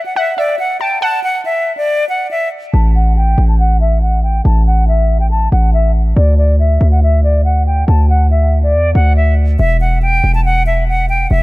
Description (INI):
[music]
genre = hip hop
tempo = 140 BPM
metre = 4/4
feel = half-time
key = unclear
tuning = A4 = 441 Hz
[part]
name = concert flute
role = melody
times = 0.0-11.4 s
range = D5 to A5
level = -16 LUFS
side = left 1 dB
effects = low-pass filter, tape echo
[part]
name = warbly dusty pluck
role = second line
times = 0.0-1.8 s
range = E5 to A5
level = -20 LUFS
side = right 1 dB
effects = chorus, tape echo
[part]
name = hard-hitting 808-style bass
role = bass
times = 2.7-11.4 s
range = E1 to E2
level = -11 LUFS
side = equal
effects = none
[sound]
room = studio ambience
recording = none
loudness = -11 LUFS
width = side -19 dB against mid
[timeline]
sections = 0.0-2.7 A section; 2.7-11.4 B section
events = filter sweep on flute 2.7-9.6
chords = 0.0 N.C.; 2.7 F#m/A; 6.2 Dsus2; 9.6 Emadd9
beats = 0.16 0.59 | 1.02 1.45 1.88 2.31 | 2.74 3.16 3.59 4.02 | 4.45 4.88 5.31 5.74 | 6.16 6.59 7.02 7.45 | 7.88 8.31 8.74 9.16 | 9.59 10.02 10.45 10.88 | 11.31